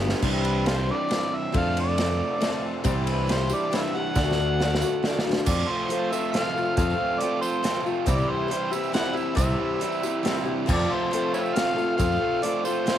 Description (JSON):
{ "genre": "folk rock and heartland rock", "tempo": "138 BPM", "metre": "3/4", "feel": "straight", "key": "unclear", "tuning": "A4 = 440 Hz", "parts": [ { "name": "picked steel-string acoustic guitar", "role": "accompaniment", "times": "0.0-13.0 s", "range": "C3 to D5", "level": "-29 LUFS", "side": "left 8 dB", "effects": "cassette tape" }, { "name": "raw garage guitar", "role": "riff", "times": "0.0-13.0 s", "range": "F2 to G4", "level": "-29 LUFS", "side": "right 8 dB", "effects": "overdrive, cassette tape" }, { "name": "picked electric bass", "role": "bass", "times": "0.0-12.2 s", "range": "G1 to F2", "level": "-26 LUFS", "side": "equal", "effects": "none" }, { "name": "natural country drum kit", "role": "drums", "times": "0.1-13.0 s", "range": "crash cymbal, hi-hat, kick drum, ride cymbal, snare drum", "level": "-28 LUFS", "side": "equal", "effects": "none" }, { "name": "overdriven harmonica", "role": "melody", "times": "0.4-13.0 s", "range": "F4 to F#5", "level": "-28 LUFS", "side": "equal", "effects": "cassette tape" }, { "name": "tambourine", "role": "percussion", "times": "2.8-12.8 s", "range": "none", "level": "-41 LUFS", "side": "right 10 dB", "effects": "none" } ], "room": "light reverb, small room ambience", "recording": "home recording on cassette", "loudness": "-22 LUFS", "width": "side -10 dB against mid", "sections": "0.2-5.5 A section; 5.5-13.0 B section", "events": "drum fill 0.0, 4.2-5.5", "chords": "0.2 Cadd9; 1.5 F6; 2.8 Cadd9; 4.2 Dadd9; 5.5 F; 8.1 C; 10.7 F" }